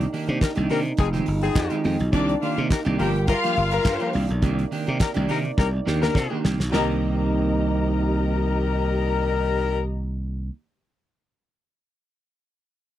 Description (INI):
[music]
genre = disco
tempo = 104 BPM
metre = 4/4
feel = straight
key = C minor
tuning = A4 = 437 Hz
[part]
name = clean electric guitar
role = accompaniment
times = 0.0-10.5 s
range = Eb3 to G4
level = -29 LUFS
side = right 4 dB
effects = lush chorus
[part]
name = dark French horn section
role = sustained chords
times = 0.0-9.8 s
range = C3 to D5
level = -30 LUFS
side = right 2 dB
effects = none
[part]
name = glassy slap bass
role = bass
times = 0.0-10.5 s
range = F1 to C3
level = -24 LUFS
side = equal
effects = none
[part]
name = damped 70s drum kit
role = drums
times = 0.0-6.9 s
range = handclaps, hi-hat, kick drum, snare drum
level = -22 LUFS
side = equal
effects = none
[part]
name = warm horn section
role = stabs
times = 0.4-9.8 s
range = G3 to Bb4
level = -26 LUFS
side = left 8 dB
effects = none
[part]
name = dark studio string section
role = second line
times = 2.1-9.8 s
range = D4 to Bb5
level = -28 LUFS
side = left 2 dB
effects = none
[sound]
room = little or no reverb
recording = dry, close 1970s-style studio recording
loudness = -20 LUFS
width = side -12 dB against mid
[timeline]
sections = 0.0-6.7 A section; 6.7-9.0 B section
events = drum fill 5.6-6.7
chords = 0.0 Cm9; 1.0 Fm9; 2.1 Cm9; 3.0 Gm7; 4.1 Cm9; 6.7 Cm7